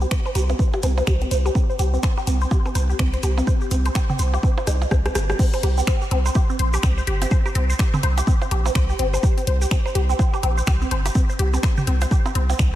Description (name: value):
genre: minimal techno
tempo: 125 BPM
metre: 4/4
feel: swing 60% on 16ths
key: unclear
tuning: A4 = 438 Hz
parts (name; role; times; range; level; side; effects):
- resonant blip pluck; riff; 0.0-12.5 s; G3 to C5; -26 LUFS; equal; phaser, sidechain pumping, tape echo
- punchy sub bass; bass; 0.0-12.8 s; G1 to C2; -20 LUFS; equal; tube saturation, sidechain pumping
- shekere; percussion; 0.0-12.7 s; none; -37 LUFS; right 3 dB; none
- electronic kick drum; drums; 0.1-12.7 s; none; -19 LUFS; equal; overdrive
- house drum kit; drums; 0.1-12.7 s; crash cymbal, finger snaps, hi-hat, rim click; -30 LUFS; left 1 dB; overdrive
- electronic percussion blips and toms; percussion; 0.3-12.6 s; none; -32 LUFS; right 3 dB; ping-pong delay
room: light reverb, digital ambience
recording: none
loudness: -18 LUFS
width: side -13 dB against mid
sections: 0.0-5.4 A section; 5.4-12.8 B section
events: filter sweep on synth arpeggio sound 0.0-5.4; drum fill 4.7-5.4; drop 5.4-12.8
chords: 0.0 C5